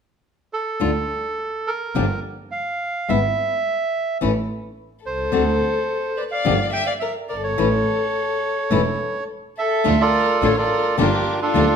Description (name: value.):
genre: tango.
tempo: 106 BPM.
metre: 4/4.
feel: rubato.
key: D harmonic minor.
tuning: A4 = 440 Hz.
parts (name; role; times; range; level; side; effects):
bandoneon; melody; 0.5-11.8 s; D4 to G5; -22 LUFS; right 3 dB; none.
nylon-string guitar; accompaniment; 0.8-11.6 s; D3 to G4; -23 LUFS; left 6 dB; none.
clear double bass; bass; 0.8-11.8 s; E1 to D2; -24 LUFS; right 3 dB; none.
dark violin; second line; 5.1-11.8 s; F4 to E5; -24 LUFS; left 6 dB; none.
rich studio string section; stabs; 9.8-11.8 s; G3 to F4; -27 LUFS; right 2 dB; none.
room: wet large studio reverb, RT60 1.2 s.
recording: none.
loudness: -19 LUFS.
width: side -7 dB against mid.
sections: 0.8-9.9 A section; 9.9-11.8 B section.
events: none.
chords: 0.0 N.C.; 0.8 D5; 2.0 Gm7; 3.1 E/G#; 4.2 A5; 5.3 D7(no3); 6.5 Gm7; 7.6 A; 9.9 Dm; 11.0 Gm7.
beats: 0.24 | 0.81 1.39 1.95 2.52 | 3.09 3.66 4.22 4.78 | 5.33 5.90 6.46 7.02 | 7.58 8.14 8.71 9.28 | 9.86 10.42 10.99 11.55.